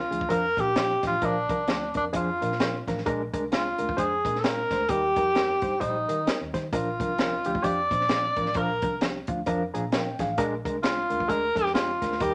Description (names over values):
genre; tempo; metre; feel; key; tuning
uptempo 1960s-style soul; 131 BPM; 4/4; swing 60% on 8ths; unclear; A4 = 440 Hz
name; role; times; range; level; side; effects
breathy tenor saxophone; melody; 0.0-12.3 s; D4 to D5; -28 LUFS; equal; none
vintage muted fingered electric bass; bass; 0.0-12.3 s; A1 to Eb3; -40 LUFS; equal; none
barky reed electric piano; accompaniment; 0.1-12.3 s; F3 to Bb5; -32 LUFS; equal; overdrive, fast tremolo
compact cocktail drum kit; drums; 0.1-12.3 s; hi-hat, kick drum, snare drum; -32 LUFS; equal; none
room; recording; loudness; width
moderate studio reverb, RT60 0.7 s; none; -26 LUFS; mono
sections
0.0-12.3 A section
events
reed electric piano fill 9.5-10.4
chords
0.0 Bb; 3.1 Bb7; 4.9 Eb; 6.7 Bb; 10.4 Bb7